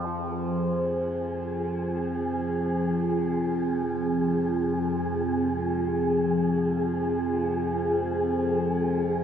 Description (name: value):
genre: dark ambient drone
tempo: free time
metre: none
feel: none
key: F minor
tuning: A4 = 439 Hz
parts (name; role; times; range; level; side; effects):
- deep dark ambient pad; sustained chords; 0.0-9.2 s; C4 to F5; -33 LUFS; left 1 dB; chorus, built-in reverb
- overtone-sweeping drone; drone; 0.0-9.2 s; F2 to F3; -27 LUFS; equal; chorus, built-in reverb, phaser
- wind-like tuned noise texture; texture; 0.5-9.2 s; Ab4; -29 LUFS; equal; built-in reverb
room: wet spring reverb, RT60 2.1 s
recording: none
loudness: -24 LUFS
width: side -8 dB against mid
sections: 0.1-9.2 A section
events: none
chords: 0.1 Fm